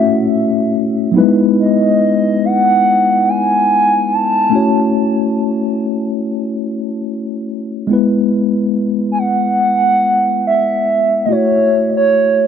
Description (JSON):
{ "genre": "reggae", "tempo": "free time", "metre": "none", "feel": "none", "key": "E major", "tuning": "A4 = 441 Hz", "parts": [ { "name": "hollow clarinet-like synth lead", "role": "melody", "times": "0.0-12.5 s", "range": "C#5 to A5", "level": "-14 LUFS", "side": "right 2 dB", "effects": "chorus, tape echo" }, { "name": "mellow tine electric piano", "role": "accompaniment", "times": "0.0-12.5 s", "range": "F#3 to E5", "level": "-15 LUFS", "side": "left 3 dB", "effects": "medium stereo tremolo" } ], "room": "light reverb", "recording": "dry, close 1970s-style studio recording", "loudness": "-12 LUFS", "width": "side -8 dB against mid", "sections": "0.0-7.9 A section; 7.9-12.5 B section", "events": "none", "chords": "0.0 F#m7; 1.1 Emaj7; 4.5 F#m7; 7.9 E; 11.3 F#m7" }